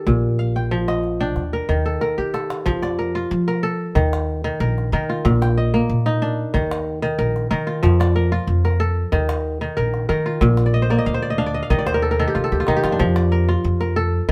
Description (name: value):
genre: west african traditional, West African string and xylophone music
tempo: 93 BPM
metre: 4/4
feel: straight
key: F mixolydian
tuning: A4 = 440 Hz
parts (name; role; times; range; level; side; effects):
- kora; arpeggios; 0.0-14.3 s; Bb2 to G5; -22 LUFS; equal; none
- upright bass; bass; 0.1-14.3 s; Bb1 to F3; -24 LUFS; equal; none
- calabash; percussion; 0.1-14.3 s; none; -28 LUFS; equal; none
room: light reverb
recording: band playing live in one room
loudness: -20 LUFS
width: mono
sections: 0.0-2.7 A section; 2.7-14.3 B section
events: drum fill 2.2-2.7, 12.5-13.0; kora fill 10.7-13.0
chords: 0.1 Bb; 1.4 Eb; 2.7 F; 4.0 Eb5; 5.2 Bb; 6.5 Eb5; 7.8 F; 9.1 Eb5; 10.4 Bb; 11.7 Cm11; 13.0 F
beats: | 0.06 0.71 1.36 2.01 | 2.66 3.31 3.96 4.60 | 5.25 5.89 6.54 7.19 | 7.83 8.48 9.12 9.77 | 10.41 11.06 11.70 12.35 | 12.99 13.64 14.28